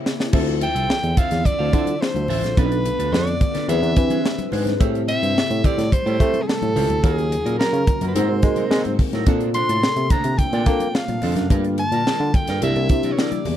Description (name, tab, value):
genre	polished 1980s jazz-funk pop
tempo	108 BPM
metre	4/4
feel	straight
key	unclear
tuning	A4 = 441 Hz
part	FM electric piano with soft pad layer	accompaniment	0.0-13.6 s	A3 to B4	-26 LUFS	left 2 dB	phaser, lush chorus
part	string machine, full ensemble	sustained chords	0.0-13.6 s	C3 to E5	-31 LUFS	equal	ensemble chorus
part	tight funk drum kit	drums	0.1-13.6 s	crash cymbal, hi-hat, kick drum, snare drum	-20 LUFS	equal	none
part	electric guitar at the edge of break-up	riff	0.3-13.5 s	C4 to F5	-30 LUFS	right 5 dB	wide subtle chorus
part	barky tine electric piano	bass	0.3-13.6 s	A1 to Bb3	-23 LUFS	equal	overdrive
part	congas	percussion	0.3-13.6 s	none	-34 LUFS	left 7 dB	none
part	clear soprano saxophone	melody	0.6-13.6 s	Ab4 to C6	-24 LUFS	equal	slapback echo
room	little or no reverb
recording	dry, close 1970s-style studio recording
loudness	-17 LUFS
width	side -11 dB against mid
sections	0.3-13.6 A section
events	drum fill 0.0-0.3; band accent 0.0-0.3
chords	0.3 Dm9; 2.6 Bm7b5; 3.7 E7b13; 4.8 Am7; 7.0 Ebm7; 8.2 Ab9; 9.3 Bbmaj9; 11.5 Gm7; 12.6 C9